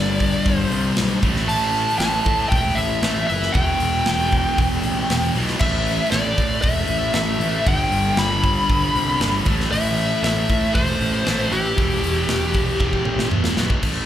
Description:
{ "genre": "hard rock", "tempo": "116 BPM", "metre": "4/4", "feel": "straight", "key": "unclear", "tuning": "A4 = 439 Hz", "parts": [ { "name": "smooth overdriven lead guitar", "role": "melody", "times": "0.0-13.3 s", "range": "G4 to B5", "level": "-23 LUFS", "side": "left 1 dB", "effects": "slapback echo" }, { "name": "scooped high-gain guitar", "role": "riff", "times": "0.0-14.1 s", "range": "E2 to A3", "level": "-23 LUFS", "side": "equal", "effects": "distortion, slapback echo" }, { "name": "fuzz picked electric bass", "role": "bass", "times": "0.0-14.0 s", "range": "E1 to A2", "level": "-24 LUFS", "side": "equal", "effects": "overdrive" }, { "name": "tight metal drum kit", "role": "drums", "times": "0.2-14.0 s", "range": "crash cymbal, hi-hat, kick drum, snare drum, toms", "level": "-23 LUFS", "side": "equal", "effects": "none" } ], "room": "light reverb", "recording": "live gig heard through the venue's PA, club reverb", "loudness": "-17 LUFS", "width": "side -11 dB against mid", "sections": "0.0-13.8 A section", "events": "drum fill 12.8-13.8", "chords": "0.0 G; 1.2 A5; 3.5 Em; 5.6 A5; 7.7 G; 9.5 Am; 11.8 Em" }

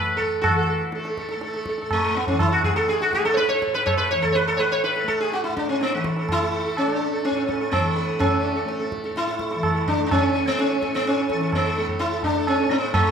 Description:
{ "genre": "indian classical, Hindustani", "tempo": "125 BPM", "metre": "4/4", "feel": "straight", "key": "A raga bilaval", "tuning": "A4 = 436 Hz", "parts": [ { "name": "sitar", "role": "melody", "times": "0.0-13.1 s", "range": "A3 to C#5", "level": "-21 LUFS", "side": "equal", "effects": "none" }, { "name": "tanpura", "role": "drone", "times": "0.0-13.1 s", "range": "A2 to A3", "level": "-30 LUFS", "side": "equal", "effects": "none" }, { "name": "tabla", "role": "percussion", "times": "0.2-13.1 s", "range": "none", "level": "-26 LUFS", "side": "right 1 dB", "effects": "none" } ], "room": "wet recital hall reverb, RT60 1.6 s", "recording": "minimal, uncompressed stereo recording", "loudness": "-20 LUFS", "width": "side -7 dB against mid", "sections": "0.4-13.1 A section", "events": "speeding up 0.0-13.1", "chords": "none" }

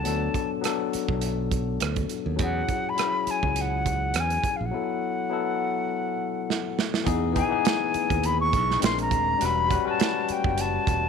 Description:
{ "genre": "lush 1970s-style soul", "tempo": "103 BPM", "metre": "4/4", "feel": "swing 54% on 16ths", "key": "E major from 7.1 s", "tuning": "A4 = 440 Hz", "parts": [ { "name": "silver concert flute", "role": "melody", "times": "0.0-11.1 s", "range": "F5 to C#6", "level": "-27 LUFS", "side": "left 1 dB", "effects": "none" }, { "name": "barky tine electric piano", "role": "accompaniment", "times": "0.0-11.1 s", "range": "E3 to B4", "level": "-28 LUFS", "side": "left 12 dB", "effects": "none" }, { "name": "modern bright fingered electric bass", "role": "bass", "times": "0.0-11.1 s", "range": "D#1 to E2", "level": "-29 LUFS", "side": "right 2 dB", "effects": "none" }, { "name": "modern studio drum kit", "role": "drums", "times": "0.1-11.0 s", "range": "hi-hat, kick drum, rim click, snare drum", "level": "-28 LUFS", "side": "right 6 dB", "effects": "none" } ], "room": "light reverb, small room ambience", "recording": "1960s-style stereo with parts hard left and right", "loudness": "-23 LUFS", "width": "side -6 dB against mid", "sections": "0.0-7.1 A section; 7.1-11.1 B section", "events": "break 4.7-7.1; drum fill 6.5-7.1", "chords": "0.0 D6; 2.4 E69; 4.7 B7sus4; 7.1 Emaj7; 8.8 A#9; 9.4 A13/E" }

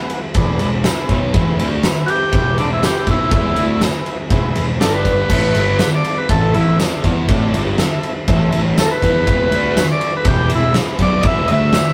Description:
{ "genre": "garage rock duo or trio", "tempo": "121 BPM", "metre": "4/4", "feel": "straight", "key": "E mixolydian", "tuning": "A4 = 440 Hz", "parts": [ { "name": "overdriven combo organ", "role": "sustained chords", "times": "0.0-11.9 s", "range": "D4 to F#5", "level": "-30 LUFS", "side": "equal", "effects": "none" }, { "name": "oversized low-tuned drum kit", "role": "drums", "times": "0.1-11.9 s", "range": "crash cymbal, kick drum, ride cymbal, snare drum", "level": "-20 LUFS", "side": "equal", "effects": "none" }, { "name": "fuzz picked electric bass", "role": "bass", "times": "0.3-11.7 s", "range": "E1 to E2", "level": "-23 LUFS", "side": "equal", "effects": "overdrive" }, { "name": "thick fuzz guitar", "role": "riff", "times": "0.4-11.7 s", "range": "E2 to E4", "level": "-23 LUFS", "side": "equal", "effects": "distortion" }, { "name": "tambourine", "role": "percussion", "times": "0.9-11.9 s", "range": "none", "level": "-34 LUFS", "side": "equal", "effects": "none" }, { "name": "overdriven combo organ", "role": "melody", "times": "2.1-11.9 s", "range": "D4 to E5", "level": "-20 LUFS", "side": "equal", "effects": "phaser" } ], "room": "moderate stone room reverb, RT60 1.0 s", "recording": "rough rehearsal-room recording", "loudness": "-16 LUFS", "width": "mono", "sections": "0.0-11.9 A section", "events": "transistor combo organ solo 0.0-11.9", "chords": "0.0 E; 4.8 G5; 5.3 A5; 9.3 E" }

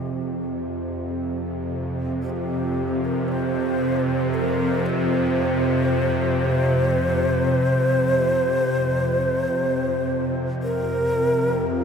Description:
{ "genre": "dark ambient drone", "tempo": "free time", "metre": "none", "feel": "none", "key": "unclear", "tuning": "A4 = 439 Hz", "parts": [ { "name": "breathy mellow shakuhachi", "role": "melody", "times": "0.0-11.8 s", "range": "G4 to D5", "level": "-24 LUFS", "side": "left 1 dB", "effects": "diffuse ambient delay" }, { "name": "bowed-like drone", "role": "drone", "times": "0.0-11.8 s", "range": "F2 to C3", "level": "-22 LUFS", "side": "equal", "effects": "built-in reverb" }, { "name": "flickering grainy texture", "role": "texture", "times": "11.8 s", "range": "F5", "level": "-43 LUFS", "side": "right 4 dB", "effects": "none" } ], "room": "wet huge ambient reverb, RT60 7.2 s", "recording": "none", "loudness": "-20 LUFS", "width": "side -6 dB against mid", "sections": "0.0-11.7 A section", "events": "fade-in on shakuhachi 0.0-11.7", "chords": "0.0 F5" }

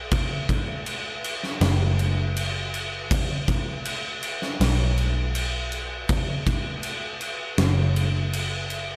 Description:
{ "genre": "rock, shoegaze and dream pop", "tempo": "80 BPM", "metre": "4/4", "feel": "straight", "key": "unclear", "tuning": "A4 = 440 Hz", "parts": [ { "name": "vintage muted picked electric bass", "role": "bass", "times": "0.0-9.0 s", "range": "F#1 to B1", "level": "-26 LUFS", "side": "equal", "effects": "none" }, { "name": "huge arena drum kit", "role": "drums", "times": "0.1-8.9 s", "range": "crash cymbal, kick drum, snare drum", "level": "-28 LUFS", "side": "equal", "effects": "none" } ], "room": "little or no reverb", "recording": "none", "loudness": "-25 LUFS", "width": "mono", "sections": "0.0-9.0 A section", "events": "none", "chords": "none" }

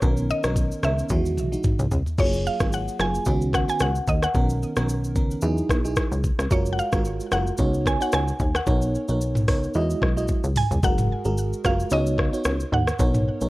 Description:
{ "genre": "afrobeats", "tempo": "111 BPM", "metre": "4/4", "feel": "swing 55% on 16ths", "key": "F# major", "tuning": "A4 = 438 Hz", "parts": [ { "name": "mallet-like synth pluck", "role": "melody", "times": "0.0-13.2 s", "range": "C#5 to G#5", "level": "-28 LUFS", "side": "equal", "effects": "chorus, digital delay" }, { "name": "FM electric piano with soft pad layer", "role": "accompaniment", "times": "0.0-13.5 s", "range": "D#3 to D#5", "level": "-27 LUFS", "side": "right 2 dB", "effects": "chorus, tremolo" }, { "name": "plucky analog bass", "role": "bass", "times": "0.0-13.5 s", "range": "F#1 to E2", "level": "-25 LUFS", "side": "equal", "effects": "none" }, { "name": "afro-pop drum kit", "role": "drums", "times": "0.0-13.5 s", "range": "crash cymbal, hi-hat, kick drum, rim click, shaker, toms", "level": "-24 LUFS", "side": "equal", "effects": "none" } ], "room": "digital ambience", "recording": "worn, warbling old tape, cassette tape, warbly pitch drift", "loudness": "-20 LUFS", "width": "side -19 dB against mid", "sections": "0.0-2.2 A section; 2.2-10.8 B section; 10.8-13.5 C section", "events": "drum fill 1.1-2.2, 10.3-10.8", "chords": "0.0 Bmaj9; 1.1 Emaj9; 2.2 F#maj9; 3.3 C#9sus4; 4.3 Bmaj9; 5.4 Emaj9; 6.5 F#maj9; 7.6 C#9sus4; 8.7 Bmaj9; 9.8 Emaj9; 10.8 F#maj9; 11.9 C#9sus4" }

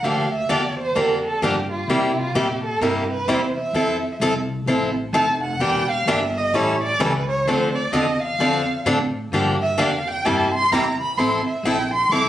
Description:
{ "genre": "acoustic string swing (jazz manouche)", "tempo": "129 BPM", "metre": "4/4", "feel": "swing 63% on 8ths", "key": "unclear", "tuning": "A4 = 436 Hz", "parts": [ { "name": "warm violin", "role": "second line", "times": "0.0-12.3 s", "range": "E4 to D6", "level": "-22 LUFS", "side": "right 2 dB", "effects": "none" }, { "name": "picked steel-string acoustic guitar", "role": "accompaniment", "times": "0.0-12.3 s", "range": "C3 to A4", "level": "-21 LUFS", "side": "left 1 dB", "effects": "none" }, { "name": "upright bass", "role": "bass", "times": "0.0-12.3 s", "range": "E1 to C3", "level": "-29 LUFS", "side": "equal", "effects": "none" } ], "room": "moderate studio reverb, RT60 0.8 s", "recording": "recorded on a phone in the room, club reverb", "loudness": "-18 LUFS", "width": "side -12 dB against mid", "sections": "0.0-11.2 A section; 11.2-12.3 A section", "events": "violin solo 0.0-12.3", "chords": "0.0 Gm7; 1.9 C7; 3.7 Fmaj7; 5.6 Em7b5; 6.5 A7; 7.5 Dm7; 9.3 Gm7; 10.3 C7; 11.2 Fmaj7" }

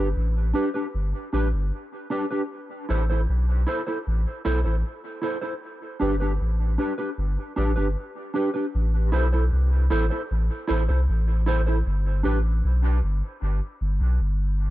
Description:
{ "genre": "dub reggae", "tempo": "77 BPM", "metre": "4/4", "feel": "straight", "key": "A minor", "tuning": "A4 = 439 Hz", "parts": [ { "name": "mellow electric guitar", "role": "accompaniment", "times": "0.0-12.4 s", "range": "D4 to C5", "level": "-28 LUFS", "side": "right 1 dB", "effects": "ensemble chorus, dub echo" }, { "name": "warm sub bass", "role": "bass", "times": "0.0-14.7 s", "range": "G1 to C2", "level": "-22 LUFS", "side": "equal", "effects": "none" } ], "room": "little or no reverb", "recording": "none", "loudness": "-22 LUFS", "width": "side -16 dB against mid", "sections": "0.0-8.7 A section; 8.7-14.7 B section", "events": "none", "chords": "0.0 G; 2.5 Am; 5.6 G; 8.7 Am; 11.9 G" }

